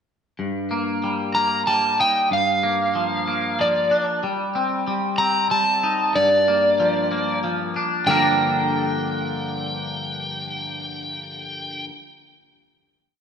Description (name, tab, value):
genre	post-rock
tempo	94 BPM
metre	3/4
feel	straight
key	G minor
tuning	A4 = 441 Hz
part	twangy electric guitar	arpeggios	0.4-11.9 s	G2 to Bb4	-23 LUFS	left 1 dB	analog chorus, slapback echo
part	overdriven slide guitar	melody	1.3-11.8 s	D5 to Bb5	-21 LUFS	right 1 dB	slapback echo
room	wet lush hall reverb, RT60 1.9 s, digital ambience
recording	none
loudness	-19 LUFS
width	side -7 dB against mid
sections	0.4-8.1 A section; 8.1-11.9 final chord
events	none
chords	0.4 Eb/G; 2.3 Gm7; 4.2 Adim/G; 6.2 Gm7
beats	| 0.39 1.03 1.67 | 2.31 2.96 3.60 | 4.24 4.88 5.51 | 6.15 6.79 7.43 | 8.07 8.71 9.35 | 9.99 10.63 11.27